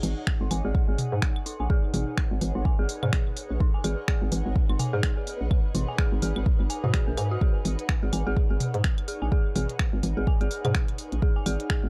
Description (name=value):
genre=minimal techno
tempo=126 BPM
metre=4/4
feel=swing 58% on 16ths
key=G# minor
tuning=A4 = 437 Hz
part: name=hollow knocking FM bass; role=bass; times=0.0-11.9 s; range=G#1 to G#2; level=-30 LUFS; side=equal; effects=sidechain pumping
part: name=minimal click drum kit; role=drums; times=0.0-11.8 s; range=finger snaps, hi-hat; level=-35 LUFS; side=equal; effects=none
part: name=electronic congas, claves and toms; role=percussion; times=0.0-11.6 s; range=none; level=-34 LUFS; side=equal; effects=overdrive, tape echo
part: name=ethereal airy pad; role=texture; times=0.0-11.9 s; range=D#4 to F#5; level=-41 LUFS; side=equal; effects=ensemble chorus, built-in reverb, phaser, sidechain pumping
part: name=flickering grainy texture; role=texture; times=1.6-11.9 s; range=B4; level=-47 LUFS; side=equal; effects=built-in reverb, sidechain pumping
part: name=electronic kick drum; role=drums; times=0.3-11.8 s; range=none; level=-27 LUFS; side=equal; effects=none
part: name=dark detuned synth bell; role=riff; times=0.4-11.8 s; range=D#4 to G#5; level=-38 LUFS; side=equal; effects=chorus, sidechain pumping, low-pass filter, delay
room=little or no reverb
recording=dark, warm production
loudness=-26 LUFS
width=mono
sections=0.0-11.9 A section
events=filter sweep on synth bell 0.0-11.9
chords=0.0 G#m7